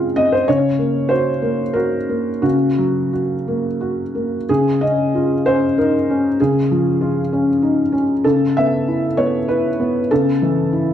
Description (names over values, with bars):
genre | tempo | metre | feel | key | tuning
neoclassical minimalist piano | 85-99 BPM | 3/4 | rubato | unclear | A4 = 440 Hz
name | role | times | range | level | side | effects
felt-muted upright piano | solo | 0.0-10.9 s | Db3 to F5 | -15 LUFS | equal | slapback echo
room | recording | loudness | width
moderate booth ambience, RT60 0.2 s | dry, close 1970s-style studio recording | -15 LUFS | side -10 dB against mid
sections
0.0-4.5 A section; 4.5-10.9 A section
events
none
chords
0.5 Gb/Db; 4.5 Dbadd9; 8.2 Aadd9/C#